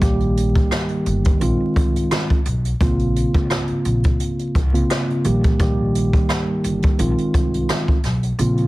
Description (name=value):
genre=hip hop, boom-bap hip-hop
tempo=86 BPM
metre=4/4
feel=swing 55% on 16ths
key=unclear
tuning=A4 = 440 Hz
part: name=mellow tine electric piano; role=accompaniment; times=0.0-8.7 s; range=Db3 to G4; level=-20 LUFS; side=right 1 dB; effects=medium stereo tremolo, cassette tape, high-pass filter, low-pass filter
part: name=upright bass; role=bass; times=0.0-8.7 s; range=G1 to Db2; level=-22 LUFS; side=equal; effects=none
part: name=jazz brush drum kit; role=drums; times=0.0-8.7 s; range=hi-hat, kick drum, rim click, snare drum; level=-20 LUFS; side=equal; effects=none
room=light reverb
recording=heavily compressed radio sound, vinyl crackle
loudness=-16 LUFS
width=side -19 dB against mid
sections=0.0-8.7 A section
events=kick muted 8.4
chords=0.0 Eb/Bb; 1.4 Fm7/Bb; 2.8 Bbmadd9; 5.2 Eb/Bb; 7.0 Fm7/Bb